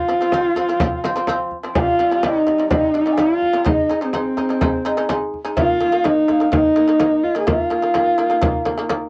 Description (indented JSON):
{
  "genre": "mongolian traditional, Mongolian folk",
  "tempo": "126 BPM",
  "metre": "4/4",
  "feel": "straight",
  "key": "unclear",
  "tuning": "A4 = 439 Hz",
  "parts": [
    { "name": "dark horsehead fiddle", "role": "melody", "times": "0.0-8.9 s", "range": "C4 to Ab4", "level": "-21 LUFS", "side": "equal", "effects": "cassette tape" },
    { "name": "mellow hollow xiao", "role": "second line", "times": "0.0-8.9 s", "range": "C5 to Ab5", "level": "-24 LUFS", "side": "equal", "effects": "cassette tape" },
    { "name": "shamisen", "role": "arpeggios", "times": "0.0-9.1 s", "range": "C3 to Eb4", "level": "-26 LUFS", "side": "equal", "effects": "cassette tape" },
    { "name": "frame drum", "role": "percussion", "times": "0.1-9.0 s", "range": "none", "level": "-25 LUFS", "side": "equal", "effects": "none" }
  ],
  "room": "moderate booth ambience, RT60 0.2 s",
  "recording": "home recording on cassette",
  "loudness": "-18 LUFS",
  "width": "mono",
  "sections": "0.0-9.1 A section",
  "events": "none",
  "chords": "0.0 F5; 1.8 C5; 3.7 Ab5; 5.6 Eb5",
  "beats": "0.33 0.80 1.28 | 1.75 2.23 2.71 3.18 | 3.66 4.14 4.61 5.09 | 5.57 6.04 6.52 7.00 | 7.47 7.95 8.43 8.90"
}